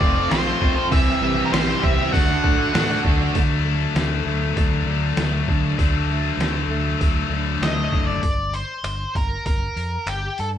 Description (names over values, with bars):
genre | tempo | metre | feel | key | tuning
quiet-loud alternative rock | 98 BPM | 4/4 | straight | unclear | A4 = 440 Hz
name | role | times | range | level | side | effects
octave-fuzz lead guitar | melody | 0.0-3.0, 7.6-10.5 s | G4 to F#5 | -25 LUFS | left 1 dB | distortion
electric guitar through a small old amp | arpeggios | 0.0-8.2 s | C3 to F4 | -28 LUFS | right 2 dB | harmonic tremolo
heavy high-gain guitar | riff | 0.0-3.3 s | C3 to G4 | -25 LUFS | right 7 dB | distortion
scooped high-gain guitar | riff | 0.0-8.2 s | C3 to G4 | -24 LUFS | left 7 dB | distortion
overdriven fingered electric bass | bass | 0.0-10.6 s | F1 to D3 | -26 LUFS | equal | none
trip hop sampler-style drum kit | drums | 0.0-10.5 s | finger snaps, hi-hat, kick drum, snare drum | -22 LUFS | equal | none
room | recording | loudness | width
moderate studio reverb, RT60 0.8 s | band playing live in one room | -18 LUFS | side -10 dB against mid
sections
0.0-3.3 A section; 3.3-8.2 B section; 8.2-10.6 C section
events
none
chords
0.0 F; 0.9 C; 2.1 D; 8.2 Gm